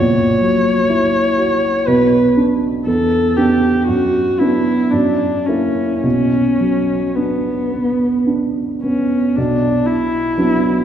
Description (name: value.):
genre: classical, romantic duo for viola and grand piano.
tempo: 53-62 BPM.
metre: 3/4.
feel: rubato.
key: B minor.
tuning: A4 = 440 Hz.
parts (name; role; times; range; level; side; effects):
warm viola; melody; 0.0-10.8 s; B3 to C#5; -18 LUFS; left 2 dB; none.
warm baby grand piano; accompaniment; 0.0-10.8 s; A#1 to F#4; -15 LUFS; right 2 dB; none.
room: wet concert hall reverb, RT60 2.1 s.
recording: heard from further back in the room.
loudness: -13 LUFS.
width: side -9 dB against mid.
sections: 0.0-9.4 A section; 9.4-10.8 B section.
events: none.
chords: 0.0 F#7/A#; 1.9 Bm; 2.9 Em7; 3.9 Bm/F#; 4.9 F#7; 6.0 Bm.